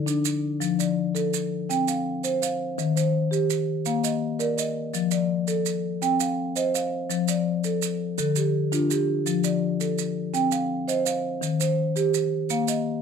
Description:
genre	southern african traditional, mbira-style interlocking cycle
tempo	111 BPM (dotted quarters)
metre	12/8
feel	straight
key	F mixolydian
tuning	A4 = 444 Hz
part	marimba with soft mallets	arpeggios	0.0-13.0 s	D3 to G5	-23 LUFS	left 1 dB	none
part	maracas	percussion	0.1-12.8 s	none	-31 LUFS	right 12 dB	none
room	moderate studio reverb, RT60 0.7 s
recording	none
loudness	-23 LUFS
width	side -6 dB against mid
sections	0.6-13.0 A section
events	none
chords	0.0 D5; 0.6 F; 1.7 C5; 2.8 Eb; 3.9 Bb; 4.9 F; 6.0 Cm; 7.1 F; 8.2 Dm; 9.3 F; 10.3 Cm; 11.4 Eb; 12.5 Bb5

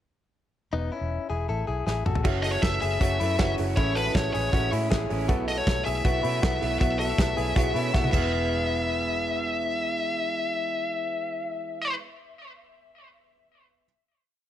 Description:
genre	jangly indie pop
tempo	158 BPM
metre	4/4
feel	straight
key	E major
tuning	A4 = 441 Hz
part	direct-recorded clean electric guitar	arpeggios	0.7-9.4 s	B3 to A4	-31 LUFS	left 5 dB	spring reverb
part	vintage muted fingered electric bass	bass	0.7-12.0 s	E1 to B2	-30 LUFS	equal	none
part	loose indie drum kit	drums	1.9-8.2 s	crash cymbal, hi-hat, kick drum, snare drum, toms	-27 LUFS	equal	none
part	electric guitar through a small old amp	accompaniment	2.2-12.1 s	F#2 to E4	-33 LUFS	right 6 dB	none
part	warm upright piano	accompaniment	2.2-13.9 s	B3 to G#5	-35 LUFS	right 8 dB	none
part	high-gain lead guitar	melody	2.4-11.9 s	B4 to E5	-28 LUFS	left 2 dB	distortion, tape echo
room	light reverb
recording	none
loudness	-24 LUFS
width	side -11 dB against mid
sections	0.7-2.2 intro; 2.2-8.3 pre-chorus; 8.3-11.3 final hit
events	drum fill 1.9-2.2, 7.9-8.3; upright piano fill 4.7-5.3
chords	0.7 Emaj7; 1.5 A5; 2.2 F#m7; 3.8 Amaj7; 5.3 B7sus4; 8.1 E

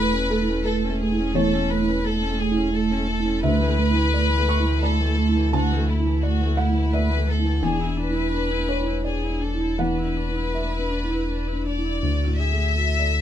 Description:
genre	neoclassical piano and strings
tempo	80-87 BPM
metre	3/4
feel	rubato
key	unclear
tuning	A4 = 436 Hz
part	warm chamber violin section	melody	0.0-13.2 s	E4 to E5	-27 LUFS	left 3 dB	none
part	felt-muted upright piano	accompaniment	0.0-13.2 s	D2 to C#6	-25 LUFS	right 2 dB	none
part	warm viola	accompaniment	0.0-13.2 s	E3 to A4	-28 LUFS	right 4 dB	none
part	sub bass with octave	bass	0.0-13.2 s	E1 to D2	-24 LUFS	left 1 dB	none
room	moderate studio reverb, RT60 0.7 s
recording	minimal, uncompressed stereo recording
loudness	-20 LUFS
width	side -10 dB against mid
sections	0.0-12.0 A section; 12.0-13.2 B section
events	none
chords	0.0 A/E; 3.4 Dsus2; 7.6 E7; 12.0 D

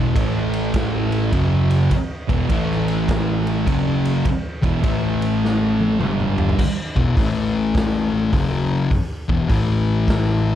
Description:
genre	stoner and doom metal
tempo	103 BPM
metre	4/4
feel	swing 65% on 8ths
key	unclear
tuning	A4 = 435 Hz
part	thick fuzz guitar	riff	0.0-10.6 s	E2 to A3	-20 LUFS	left 4 dB	distortion
part	thick fuzz guitar	riff	0.0-6.6 s	E2 to A3	-23 LUFS	right 9 dB	distortion
part	fuzz picked electric bass	bass	0.0-10.6 s	E1 to A1	-24 LUFS	right 1 dB	overdrive
part	raw garage drum kit	drums	0.2-10.3 s	crash cymbal, hi-hat, kick drum, ride cymbal, snare drum, toms	-23 LUFS	equal	none
room	light reverb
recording	dark, warm production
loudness	-17 LUFS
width	side -11 dB against mid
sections	0.0-6.6 A section; 6.6-10.6 B section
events	drum fill 5.4-6.6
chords	0.2 A5; 1.3 F#5; 2.2 E5; 2.5 A5; 3.7 F#5; 4.5 E5; 4.8 A5; 6.0 G5; 6.6 E5; 7.2 A5; 8.3 F#5; 9.2 E5; 9.5 A5

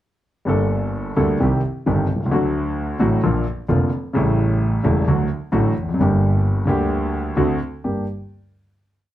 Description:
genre	tango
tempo	131 BPM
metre	4/4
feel	rubato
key	G minor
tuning	A4 = 440 Hz
part	dark grand piano	accompaniment	0.5-8.0 s	E1 to A4	-18 LUFS	equal	none
part	rich double bass	bass	0.5-8.0 s	E1 to D2	-23 LUFS	right 1 dB	none
room	light reverb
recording	dark, warm production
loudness	-17 LUFS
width	side -13 dB against mid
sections	0.5-7.8 A section; 7.8-9.1 final chord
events	none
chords	0.5 Gmadd9; 1.4 Cm; 2.3 D; 3.2 Bb; 4.2 A7; 5.1 D; 6.0 Gm; 7.4 D7; 7.8 Gm

